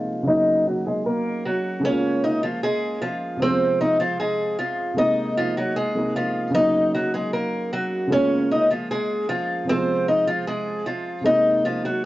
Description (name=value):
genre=hip hop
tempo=153 BPM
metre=4/4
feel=half-time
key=Bb minor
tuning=A4 = 443 Hz
part: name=picked acoustic archtop guitar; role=melody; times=0.0-12.0 s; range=F3 to Eb5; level=-21 LUFS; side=equal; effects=low-pass filter, cassette tape, tape echo
part: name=dark concert grand piano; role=accompaniment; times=0.0-12.1 s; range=C3 to F4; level=-26 LUFS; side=equal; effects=low-pass filter, cassette tape
room=moderate booth ambience, RT60 0.2 s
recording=home recording on cassette, nothing above 7.7 kHz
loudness=-20 LUFS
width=side -16 dB against mid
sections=0.0-12.1 A section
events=filter sweep 0.0-1.8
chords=0.3 Ebm7; 1.8 Bbm7; 3.4 Fm; 5.0 Abadd9; 6.6 Ebm7; 8.1 Bbm7; 9.7 Fm; 11.3 Abadd9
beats=| 0.28 0.67 1.06 1.45 | 1.85 2.24 2.63 3.02 | 3.41 3.81 4.20 4.59 | 4.98 5.38 5.77 6.16 | 6.55 6.94 7.34 7.73 | 8.12 8.51 8.90 9.30 | 9.69 10.08 10.47 10.87 | 11.26 11.65 12.04